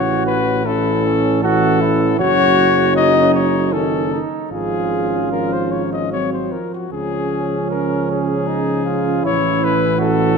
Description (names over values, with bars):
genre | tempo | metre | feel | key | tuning
classical, brass quintet | 78 BPM | 3/4 | rubato | Db major | A4 = 442 Hz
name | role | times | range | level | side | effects
mellow cornet | melody | 0.0-10.4 s | Gb4 to Eb5 | -19 LUFS | left 10 dB | none
mellow flugelhorn | second line | 0.0-10.4 s | C#4 to Gb4 | -22 LUFS | right 6 dB | none
mellow French horn | accompaniment | 0.0-10.4 s | C4 to Db4 | -23 LUFS | left 2 dB | none
mellow euphonium | accompaniment | 0.0-10.4 s | Eb3 to Gb3 | -22 LUFS | right 5 dB | none
mellow tuba | bass | 0.0-10.4 s | Gb1 to Db2 | -23 LUFS | right 5 dB | none
room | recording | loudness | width
moderate concert hall reverb, RT60 2.4 s | none | -15 LUFS | side -5 dB against mid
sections
0.0-10.4 A section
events
none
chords
0.0 A; 2.2 Gb5; 3.7 Ebm7b5/Gb; 4.5 Db/Ab; 6.1 Ab; 6.9 Db; 9.2 A